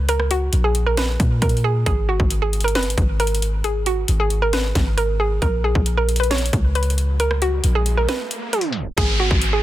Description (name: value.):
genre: hip hop, trap.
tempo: 135 BPM.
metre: 4/4.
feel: half-time.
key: Bb phrygian.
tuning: A4 = 440 Hz.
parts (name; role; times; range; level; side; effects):
hollow square pluck; melody; 0.0-9.6 s; Gb4 to Db5; -22 LUFS; right 2 dB; chorus, tape echo.
warm 808-style bass; bass; 0.0-9.6 s; Gb1 to Bb2; -20 LUFS; equal; none.
trap drum kit; drums; 0.1-9.5 s; hi-hat, kick drum, rim click, snare drum; -22 LUFS; equal; none.
riser and downlifter; sound effects; 7.1-9.6 s; none; -27 LUFS; right 1 dB; none.
room: little or no reverb.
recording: dense, heavily limited modern master, tape stop.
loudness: -17 LUFS.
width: side -14 dB against mid.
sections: 0.0-9.0 A section.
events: riser 7.1-9.0; break 8.1-9.0; tape stop 8.5-9.0.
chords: 0.0 Bbm; 1.9 Abm7; 5.4 Bbm; 9.0 Ab7(no3).